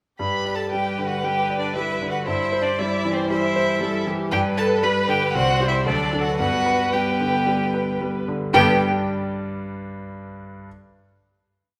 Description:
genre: quick classical-period movement for piano quintet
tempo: 115 BPM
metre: 4/4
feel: straight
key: G major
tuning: A4 = 440 Hz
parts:
  - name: clear violin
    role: melody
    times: 0.2-8.8 s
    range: C5 to B5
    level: -27 LUFS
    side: equal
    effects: none
  - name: rich violin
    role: second line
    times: 0.2-8.8 s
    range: C4 to B4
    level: -28 LUFS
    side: equal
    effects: none
  - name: clear concert grand piano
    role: accompaniment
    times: 0.2-10.7 s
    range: C2 to D5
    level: -27 LUFS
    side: equal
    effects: none
  - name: clear viola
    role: accompaniment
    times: 0.2-8.8 s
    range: B3 to D5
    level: -30 LUFS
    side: equal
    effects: none
  - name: rich cello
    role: second line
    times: 0.7-8.8 s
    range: D3 to B3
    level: -33 LUFS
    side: equal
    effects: none
room: wet recital hall reverb, RT60 1.5 s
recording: none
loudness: -22 LUFS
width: mono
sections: 0.2-8.5 A section; 8.5-10.7 final chord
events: none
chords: 0.2 G; 2.3 C/G; 4.3 G; 5.3 C5; 5.9 D; 6.4 G

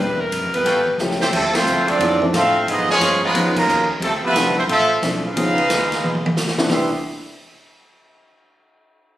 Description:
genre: jazz, big band swing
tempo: 179 BPM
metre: 4/4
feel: swing 64% on 8ths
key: C major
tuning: A4 = 440 Hz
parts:
  - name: bright saxophone section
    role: melody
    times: 0.0-1.0 s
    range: Bb4 to B4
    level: -20 LUFS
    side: left 1 dB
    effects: none
  - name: upright bass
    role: bass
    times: 0.0-6.9 s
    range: E1 to A2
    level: -30 LUFS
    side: equal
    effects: none
  - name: swinging big-band drum kit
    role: drums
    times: 0.3-6.8 s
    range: crash cymbal, hi-hat, kick drum, ride cymbal, snare drum, toms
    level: -24 LUFS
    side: equal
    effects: none
  - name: clear trombone section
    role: second line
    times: 0.5-6.9 s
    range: Cb3 to F4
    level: -24 LUFS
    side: right 1 dB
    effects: none
  - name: clear trumpet section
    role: stabs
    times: 0.7-1.3 s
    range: A4 to G5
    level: -23 LUFS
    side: equal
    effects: none
  - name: dark baby grand piano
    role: accompaniment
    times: 1.0-6.9 s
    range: E3 to A4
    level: -22 LUFS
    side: left 1 dB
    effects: none
  - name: warm trumpet section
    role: melody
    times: 1.3-6.9 s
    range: Ab3 to C6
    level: -18 LUFS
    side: right 1 dB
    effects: none
room: moderate large studio reverb, RT60 1.2 s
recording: recorded on a phone in the room, studio reverb, compression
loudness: -16 LUFS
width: side -14 dB against mid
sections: 0.0-1.3 A section; 1.3-6.7 B section; 6.7-8.0 C section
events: drum fill 1.0-1.3, 6.0-6.7; band accent 1.5, 3.5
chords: 0.0 E5; 0.7 A7b13; 1.3 Dm9; 2.7 Db9; 4.0 Dm9; 5.4 Db9; 6.7 Cmaj7

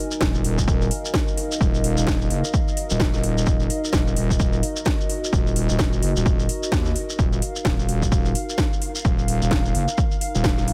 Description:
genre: bass house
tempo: 129 BPM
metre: 4/4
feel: swing 60% on 16ths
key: Eb minor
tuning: A4 = 440 Hz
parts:
  - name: dark analog pad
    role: sustained chords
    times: 0.0-10.7 s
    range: Eb4 to F5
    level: -34 LUFS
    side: equal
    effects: chorus, sidechain pumping
  - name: warbly tape-like pad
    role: texture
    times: 0.0-10.7 s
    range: Eb4 to Ab5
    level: -34 LUFS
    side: equal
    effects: chorus, built-in reverb, sidechain pumping
  - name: shekere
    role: percussion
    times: 0.1-10.7 s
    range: none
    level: -34 LUFS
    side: equal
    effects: none
  - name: wobble bass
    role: bass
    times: 0.2-10.7 s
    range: Eb1 to Eb2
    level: -25 LUFS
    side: equal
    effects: chorus, overdrive, sidechain pumping
  - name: electronic kick drum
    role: drums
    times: 0.2-10.6 s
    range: none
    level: -25 LUFS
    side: equal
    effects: overdrive
  - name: house drum kit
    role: drums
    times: 0.2-10.7 s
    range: hi-hat, snare drum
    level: -30 LUFS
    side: equal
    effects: overdrive
room: digital ambience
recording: none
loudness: -22 LUFS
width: mono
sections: 0.0-10.7 A section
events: none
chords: 0.0 Ebmadd9

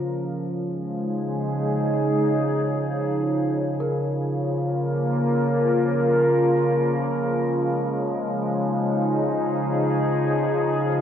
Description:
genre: ambient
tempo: free time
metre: none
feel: none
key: unclear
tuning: A4 = 442 Hz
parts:
  - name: evolving wavetable pad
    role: sustained chords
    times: 0.0-11.0 s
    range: Db3 to Bb4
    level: -21 LUFS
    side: equal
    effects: chorus, built-in reverb, cassette tape
  - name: worn celesta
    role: arpeggios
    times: 3.8-6.9 s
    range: Bb4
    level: -36 LUFS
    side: equal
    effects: none
room: wet booth ambience, RT60 0.2 s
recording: home recording on cassette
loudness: -21 LUFS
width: side -9 dB against mid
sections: 0.0-11.0 A section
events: none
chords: 0.0 Dbadd9

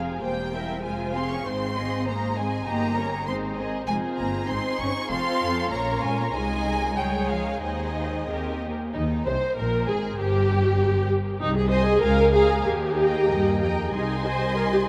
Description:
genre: quick classical-period movement for string orchestra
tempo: 90-101 BPM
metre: 2/4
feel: rubato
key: Ab major from 3.9 s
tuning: A4 = 439 Hz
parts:
  - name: warm studio violin section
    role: second line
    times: 0.0-14.9 s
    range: Eb4 to Ab5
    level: -33 LUFS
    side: equal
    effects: none
  - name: dark studio viola section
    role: accompaniment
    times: 0.0-14.9 s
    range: Ab3 to C5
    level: -28 LUFS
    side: equal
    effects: none
  - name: dark studio cello section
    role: bass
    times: 0.0-14.9 s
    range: C2 to Db4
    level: -32 LUFS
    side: equal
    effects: none
  - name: warm studio double bass section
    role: bass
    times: 0.0-14.9 s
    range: E1 to Bb2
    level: -32 LUFS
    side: equal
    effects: none
  - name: rich studio violin section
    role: melody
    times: 0.2-14.9 s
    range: Eb4 to Db6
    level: -34 LUFS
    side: equal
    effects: none
room: wet huge ambient reverb, RT60 8.6 s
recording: in a vast, echoing space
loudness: -25 LUFS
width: mono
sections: 0.0-8.9 A section; 8.9-14.9 B section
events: none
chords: 0.2 C7/E; 0.8 Fm; 1.5 Ab; 2.7 Eb7/G; 3.3 Ab; 3.9 Fm; 5.1 F; 5.7 Bbm; 6.3 Ab/C; 7.0 Db; 7.6 Ab/Eb; 8.3 Eb; 8.9 Cm; 9.6 Absus2; 10.2 N.C.; 11.4 Ab/C; 12.0 Bbm7/Db; 12.7 Eb; 13.9 Ab/C

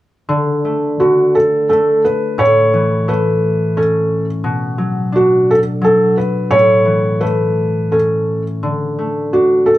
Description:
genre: children's music, lullaby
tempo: 86 BPM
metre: 3/4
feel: rubato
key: D major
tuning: A4 = 441 Hz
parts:
  - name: concert harp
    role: accompaniment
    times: 0.3-9.8 s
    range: A2 to D4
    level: -16 LUFS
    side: left 1 dB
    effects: none
  - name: felt-muted upright piano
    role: melody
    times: 1.0-9.8 s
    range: F#4 to C#5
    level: -13 LUFS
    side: right 1 dB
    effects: none
room: moderate large studio reverb, RT60 0.8 s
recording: band playing live in one room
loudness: -12 LUFS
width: side -15 dB against mid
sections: 0.3-9.8 A section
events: none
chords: 0.3 D5; 2.4 Aadd9; 4.5 Bm; 6.5 A; 8.6 D5

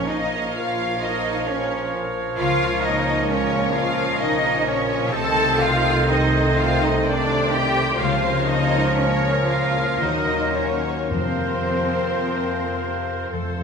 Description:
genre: classical, slow romantic movement for symphony orchestra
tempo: 52-67 BPM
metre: 3/4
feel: rubato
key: Bb minor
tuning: A4 = 440 Hz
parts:
  - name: warm symphonic violin section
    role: melody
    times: 0.0-13.3 s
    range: C5 to A5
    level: -30 LUFS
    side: left 4 dB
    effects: none
  - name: clear oboe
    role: second line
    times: 0.0-13.6 s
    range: Bb4 to Db5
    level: -30 LUFS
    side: right 2 dB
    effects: none
  - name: concert flute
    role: second line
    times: 0.0-13.3 s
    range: C5 to A5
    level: -29 LUFS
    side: equal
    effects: none
  - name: mellow clarinet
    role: second line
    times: 0.0-13.6 s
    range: A4 to Bb4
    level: -32 LUFS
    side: left 3 dB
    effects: none
  - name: rich symphonic violin section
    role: second line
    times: 0.0-13.3 s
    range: C5 to A5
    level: -30 LUFS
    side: left 2 dB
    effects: none
  - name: rich symphonic viola section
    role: accompaniment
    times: 0.0-13.6 s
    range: A4 to F5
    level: -30 LUFS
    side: left 1 dB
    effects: none
  - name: warm bassoon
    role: accompaniment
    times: 0.0-13.6 s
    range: Eb3 to Gb3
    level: -30 LUFS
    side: right 1 dB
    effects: none
  - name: concert harp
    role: arpeggios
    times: 0.0-13.6 s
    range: Bb2 to F5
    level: -29 LUFS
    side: left 6 dB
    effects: none
  - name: rich chamber double bass section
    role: bass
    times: 0.0-13.6 s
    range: Bb1 to F2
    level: -28 LUFS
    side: right 4 dB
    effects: none
  - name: rich symphonic cello section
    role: bass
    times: 0.0-13.3 s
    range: C4 to A4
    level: -26 LUFS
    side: right 2 dB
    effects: none
  - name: timpani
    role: percussion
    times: 0.0-1.0, 11.1-13.6 s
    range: F2 to Bb2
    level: -33 LUFS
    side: left 1 dB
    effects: none
  - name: bright trombone section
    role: sustained chords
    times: 2.4-13.6 s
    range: Bb2 to Gb3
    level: -30 LUFS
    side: right 2 dB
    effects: none
  - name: mellow French horn section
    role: sustained chords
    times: 2.4-13.6 s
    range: A3 to F4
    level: -29 LUFS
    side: left 5 dB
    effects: none
room: wet recital hall reverb, RT60 1.5 s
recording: minimal, uncompressed stereo recording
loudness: -18 LUFS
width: side -6 dB against mid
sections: 0.0-13.6 A section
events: timpani fill 13.3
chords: 0.0 Bbm; 5.1 Adim/C; 8.0 Bbm/Db; 10.0 Ebm; 11.1 Fsus4

